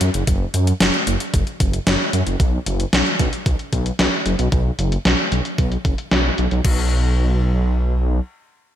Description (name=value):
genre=synthwave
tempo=113 BPM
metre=4/4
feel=straight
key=unclear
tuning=A4 = 439 Hz
part: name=wide detuned saw bass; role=bass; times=0.0-8.2 s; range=F#1 to F#2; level=-19 LUFS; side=equal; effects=chorus, tube saturation
part: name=gated 80s digital drum machine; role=drums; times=0.0-6.8 s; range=crash cymbal, hi-hat, snare drum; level=-20 LUFS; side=equal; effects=gated reverb, gated reverb snare, overdrive, low-pass filter on hats, low-pass filter on perc, low-pass filter on snare, low-pass filter on cymbals, low-pass filter on room
part: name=electronic kick drum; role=drums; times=0.3-6.8 s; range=none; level=-20 LUFS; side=equal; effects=overdrive
room=light reverb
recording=bright 1980s-style digital production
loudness=-16 LUFS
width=side -11 dB against mid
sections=0.0-6.6 A section; 6.6-8.8 B section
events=none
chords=none